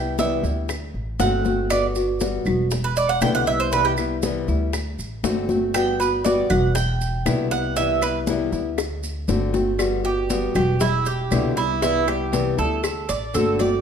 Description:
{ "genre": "latin, Cuban son and guajira", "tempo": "119 BPM", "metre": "4/4", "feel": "straight", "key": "G major", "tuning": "A4 = 437 Hz", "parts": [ { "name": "nylon-string guitar", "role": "accompaniment", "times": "0.0-13.8 s", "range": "B2 to F#4", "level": "-24 LUFS", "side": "left 2 dB", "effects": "none" }, { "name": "Cuban tres", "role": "arpeggios", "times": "0.0-13.8 s", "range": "E4 to G5", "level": "-23 LUFS", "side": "right 5 dB", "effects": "none" }, { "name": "upright bass", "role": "bass", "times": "0.0-13.8 s", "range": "E1 to D2", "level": "-26 LUFS", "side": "equal", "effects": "none" }, { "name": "bongos and cowbell", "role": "percussion", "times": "0.2-13.8 s", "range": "none", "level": "-31 LUFS", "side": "left 6 dB", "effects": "none" }, { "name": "congas", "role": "percussion", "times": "0.2-13.8 s", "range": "none", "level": "-28 LUFS", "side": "left 2 dB", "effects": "none" }, { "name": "maracas", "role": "percussion", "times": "0.2-13.8 s", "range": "none", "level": "-36 LUFS", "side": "right 5 dB", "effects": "none" }, { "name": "claves", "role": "percussion", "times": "0.7-13.1 s", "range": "none", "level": "-36 LUFS", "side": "right 2 dB", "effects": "none" } ], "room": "moderate large studio reverb, RT60 1.4 s", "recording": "minimal, uncompressed stereo recording", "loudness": "-19 LUFS", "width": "side -7 dB against mid", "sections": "0.0-9.8 A section; 9.8-13.8 B section", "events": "Cuban tres solo 0.0-9.8; drum fill 8.8-9.8", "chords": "0.0 Cmaj7; 0.7 D7; 1.7 Gmaj7; 2.7 Em7; 3.7 Cmaj7; 4.7 D7; 5.8 Gmaj7; 6.8 Em7; 7.8 Cmaj7; 8.8 D7; 9.8 Gmaj7; 10.8 Em7; 11.8 Cmaj7; 12.8 D7" }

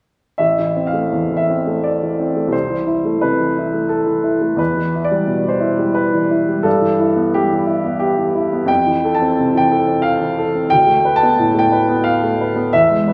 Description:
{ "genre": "classical, romantic character piece for solo piano", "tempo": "88 BPM", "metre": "3/4", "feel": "rubato", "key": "A minor", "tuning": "A4 = 440 Hz", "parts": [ { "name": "clear baby grand piano", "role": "solo", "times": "0.4-13.1 s", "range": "A1 to A5", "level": "-16 LUFS", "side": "equal", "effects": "none" } ], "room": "wet recital hall reverb, RT60 1.4 s", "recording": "recorded in a church or concert hall", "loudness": "-17 LUFS", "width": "mono", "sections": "0.4-13.1 A section", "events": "none", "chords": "0.4 Am; 2.5 Am/C; 4.6 Em; 6.7 Em/G; 8.7 Fmaj7; 10.7 Bm7b5/D" }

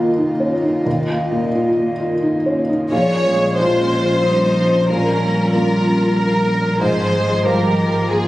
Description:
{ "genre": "neoclassical piano and strings", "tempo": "86-94 BPM", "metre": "3/4", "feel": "rubato", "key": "Bb dorian", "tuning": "A4 = 440 Hz", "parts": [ { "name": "felt-muted upright piano", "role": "accompaniment", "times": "0.0-8.3 s", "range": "Eb2 to F4", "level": "-20 LUFS", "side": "equal", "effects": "none" }, { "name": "airy breathy pad", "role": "sustained chords", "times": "0.0-8.3 s", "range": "F3 to Eb5", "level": "-24 LUFS", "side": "equal", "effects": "chorus" }, { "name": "rich chamber violin section", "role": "melody", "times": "2.9-8.3 s", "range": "Ab4 to Db5", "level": "-18 LUFS", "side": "equal", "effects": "none" }, { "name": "rich cello", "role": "second line", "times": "2.9-8.3 s", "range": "F3 to Bb3", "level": "-22 LUFS", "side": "right 1 dB", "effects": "none" }, { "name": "rich viola", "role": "accompaniment", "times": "2.9-8.3 s", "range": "Db4 to Bb4", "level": "-24 LUFS", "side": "equal", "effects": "none" }, { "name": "rich double bass", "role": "bass", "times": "2.9-8.3 s", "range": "Ab1 to Bb1", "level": "-22 LUFS", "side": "equal", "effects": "none" } ], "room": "moderate recital hall reverb, RT60 1.7 s", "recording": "recorded on a phone in the room, club reverb, compression", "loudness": "-15 LUFS", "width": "side -16 dB against mid", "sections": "0.0-2.9 A section; 2.9-8.3 A section", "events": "none", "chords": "0.0 Ebsus2; 2.9 Bbm7; 6.8 Fmadd9/Ab" }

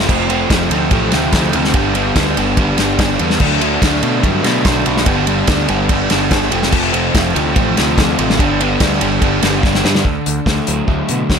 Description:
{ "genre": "indie rock", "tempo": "144 BPM", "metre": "4/4", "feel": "straight", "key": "unclear", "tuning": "A4 = 440 Hz", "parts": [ { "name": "crunchy overdriven guitar", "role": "riff", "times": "0.0-11.4 s", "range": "F2 to D4", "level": "-16 LUFS", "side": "equal", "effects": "none" }, { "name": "growling picked electric bass", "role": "bass", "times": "0.0-11.4 s", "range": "F1 to B2", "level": "-20 LUFS", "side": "equal", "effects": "overdrive" }, { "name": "loose indie drum kit", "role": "drums", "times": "0.0-11.4 s", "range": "crash cymbal, hi-hat, kick drum, ride cymbal, snare drum", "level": "-16 LUFS", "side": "equal", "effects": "none" } ], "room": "light reverb", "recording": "none", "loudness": "-12 LUFS", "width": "side -6 dB against mid", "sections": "0.0-10.1 A section; 10.1-11.4 B section", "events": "drum fill 9.6-10.1", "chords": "0.0 F; 1.7 G; 3.4 D; 5.1 G; 6.5 F; 8.4 G; 10.1 D" }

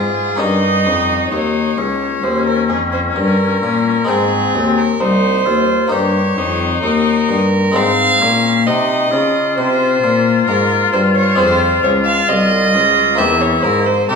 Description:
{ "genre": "classical, baroque-style sonata movement with continuo", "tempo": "66 BPM", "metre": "4/4", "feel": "rubato", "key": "Ab major", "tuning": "A4 = 435 Hz", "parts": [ { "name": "clear oboe", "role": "melody", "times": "0.0-14.2 s", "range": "C4 to G4", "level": "-19 LUFS", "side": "left 6 dB", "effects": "none" }, { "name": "rich violin", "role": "second line", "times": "0.0-14.2 s", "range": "Ab4 to F5", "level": "-16 LUFS", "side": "right 3 dB", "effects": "none" }, { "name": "harpsichord", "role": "accompaniment", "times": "0.0-14.2 s", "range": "C2 to G4", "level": "-20 LUFS", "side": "left 3 dB", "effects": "none" }, { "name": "rich cello", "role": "bass", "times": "0.0-14.2 s", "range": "C2 to Db3", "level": "-18 LUFS", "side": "left 2 dB", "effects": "none" } ], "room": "wet recital hall reverb, RT60 1.4 s", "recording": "small room ambience", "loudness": "-12 LUFS", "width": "side -5 dB against mid", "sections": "0.0-14.2 A section", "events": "none", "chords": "0.4 Eb7; 4.1 Ab; 5.9 Eb7; 7.8 Ab; 11.4 Fm; 13.2 C7/E" }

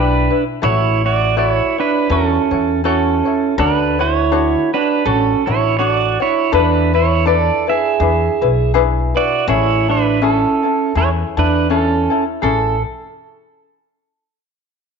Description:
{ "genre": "Hawaiian", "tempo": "81 BPM", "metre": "4/4", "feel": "swing 56% on 8ths", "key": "A major", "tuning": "A4 = 441 Hz", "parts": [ { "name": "pedal steel guitar", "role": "melody", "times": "0.0-12.8 s", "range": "C#4 to E5", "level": "-16 LUFS", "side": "right 7 dB", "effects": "none" }, { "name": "ukulele", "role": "accompaniment", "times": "0.0-12.8 s", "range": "C#4 to C#5", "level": "-20 LUFS", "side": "left 12 dB", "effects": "none" }, { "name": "upright bass", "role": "bass", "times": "0.0-12.8 s", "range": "A1 to E2", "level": "-19 LUFS", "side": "left 1 dB", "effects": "none" } ], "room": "moderate echo chamber reverb, RT60 1.4 s", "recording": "1960s-style stereo with parts hard left and right, nothing above 7.6 kHz", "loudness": "-13 LUFS", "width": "side -5 dB against mid", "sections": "0.0-12.4 A section; 12.4-15.0 B section", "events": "none", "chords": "0.0 Em7; 0.6 A6; 6.5 E7sus4; 8.0 E7; 9.5 Amaj7" }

